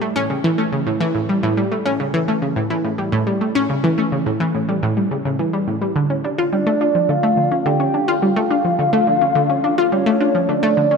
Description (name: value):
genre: ambient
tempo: 106 BPM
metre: 4/4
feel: straight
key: D harmonic minor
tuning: A4 = 440 Hz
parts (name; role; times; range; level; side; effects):
- analog pluck; riff; 0.0-11.0 s; A2 to F4; -17 LUFS; equal; chorus, analog delay
- soft octave-layered synth lead; melody; 6.5-11.0 s; C#5 to G5; -17 LUFS; equal; chorus, phaser, analog delay
room: wet plate reverb, RT60 3.6 s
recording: echo-heavy mix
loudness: -16 LUFS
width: side -5 dB against mid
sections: 0.0-11.0 A section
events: none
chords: 0.0 A; 6.0 Dm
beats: 0.30 0.86 | 1.43 2.00 2.56 3.13 | 3.69 4.26 4.83 5.39 | 5.96 6.52 7.09 7.66 | 8.22 8.79 9.35 9.92 | 10.49